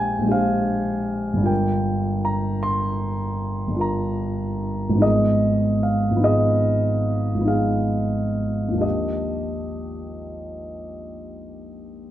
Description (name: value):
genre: classical, impressionist solo piano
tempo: 43-53 BPM (dotted quarters)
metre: 9/8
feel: rubato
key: Eb major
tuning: A4 = 441 Hz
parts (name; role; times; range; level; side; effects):
- warm grand piano; solo; 0.0-12.1 s; G1 to C6; -20 LUFS; equal; none
room: moderate large studio reverb, RT60 1.5 s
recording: dark, warm production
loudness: -19 LUFS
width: side -12 dB against mid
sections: 0.0-12.1 A section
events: none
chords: 0.0 Bb13; 1.5 Gm7; 5.0 Abm6; 8.8 Ebmaj9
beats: 0.35 | 1.50 2.67 3.83 | 5.05 6.27 7.51 | 8.84 10.21 11.53